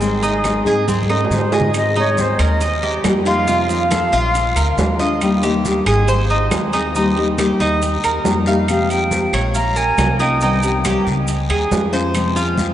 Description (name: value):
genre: latin, Cuban son and guajira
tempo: 138 BPM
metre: 4/4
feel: straight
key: Ab major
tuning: A4 = 436 Hz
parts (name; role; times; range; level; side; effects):
- silver concert flute; melody; 0.0-5.0, 8.7-11.0 s; Ab4 to Bb5; -23 LUFS; equal; none
- nylon-string guitar; accompaniment; 0.0-12.7 s; C3 to Ab4; -20 LUFS; left 2 dB; none
- Cuban tres; arpeggios; 0.0-12.7 s; C4 to F5; -20 LUFS; right 1 dB; none
- upright bass; bass; 0.0-12.7 s; Ab1 to Ab2; -21 LUFS; equal; none
- congas; percussion; 0.0-12.7 s; none; -27 LUFS; equal; none
- guiro; percussion; 0.0-12.7 s; none; -32 LUFS; left 4 dB; none
- maracas; percussion; 0.0-12.7 s; none; -33 LUFS; right 4 dB; none
- timbales; percussion; 0.2-12.7 s; none; -27 LUFS; right 4 dB; none
- claves; percussion; 0.4-12.4 s; none; -34 LUFS; right 2 dB; none
room: wet cathedral reverb, RT60 6.9 s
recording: in a vast, echoing space, nothing above 10.7 kHz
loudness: -14 LUFS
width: side -11 dB against mid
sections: 0.0-1.7 A section; 1.7-12.7 B section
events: drum fill 0.9-1.7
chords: 0.0 Ab; 1.7 Abadd9; 2.6 Eb; 3.5 F; 4.3 Bb7; 5.2 Eb; 6.1 Ab; 6.9 Eb; 8.7 Fmadd9; 9.5 Bbm; 10.4 Cm; 11.3 Db; 12.2 Fm